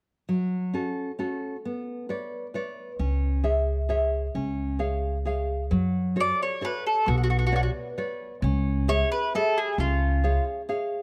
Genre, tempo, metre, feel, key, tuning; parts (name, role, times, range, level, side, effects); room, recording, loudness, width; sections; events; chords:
italian folk, Italian serenade; 133 BPM; 3/4; straight; F# harmonic minor; A4 = 436 Hz
nylon-string guitar; accompaniment; 0.3-11.0 s; F#3 to E#5; -31 LUFS; equal
upright bass; bass; 3.0-10.4 s; B1 to F#2; -28 LUFS; equal
mandolin; melody; 6.2-10.4 s; E#4 to D5; -28 LUFS; equal
light reverb; close, detailed microphones; -27 LUFS; mono
0.3-5.7 A section; 5.7-11.0 B section
0.3 F#m; 1.7 Bmadd9; 3.0 C#m; 4.4 C#; 5.7 F#m; 7.1 Bmadd9; 8.4 C#m; 9.8 C#